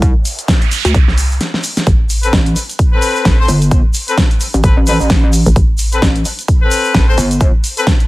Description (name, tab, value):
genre	bass house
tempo	130 BPM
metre	4/4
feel	swing 58% on 16ths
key	A minor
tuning	A4 = 440 Hz
part	pulsing pluck wobble bass	bass	0.0-7.5 s	G1 to D2	-13 LUFS	equal	chorus, overdrive, sidechain pumping
part	big-room dance drum kit	drums	0.0-8.1 s	hi-hat, snare drum	-18 LUFS	equal	none
part	electronic kick drum	drums	0.0-8.0 s	none	-12 LUFS	equal	none
part	tube shaker	percussion	0.0-8.0 s	none	-25 LUFS	right 1 dB	none
part	noise sweep	sound effects	0.3-1.9 s	none	-22 LUFS	right 7 dB	none
part	hollow knocking FM bass	bass	0.9-7.2 s	A1 to C2	-13 LUFS	equal	tube saturation, sidechain pumping
part	brilliant horn section	stabs	2.2-7.9 s	C4 to C5	-18 LUFS	left 3 dB	sidechain pumping, tape echo
room	digital ambience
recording	none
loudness	-10 LUFS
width	side -19 dB against mid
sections	0.0-8.1 A section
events	noise sweep 0.3-1.9; break 1.4-1.9; drum fill 1.4-1.9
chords	0.0 N.C.; 1.9 Amadd9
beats	| 0.02 0.48 0.94 1.41 | 1.87 2.33 2.79 3.25 | 3.71 4.18 4.64 5.10 | 5.56 6.02 6.48 6.95 | 7.41 7.87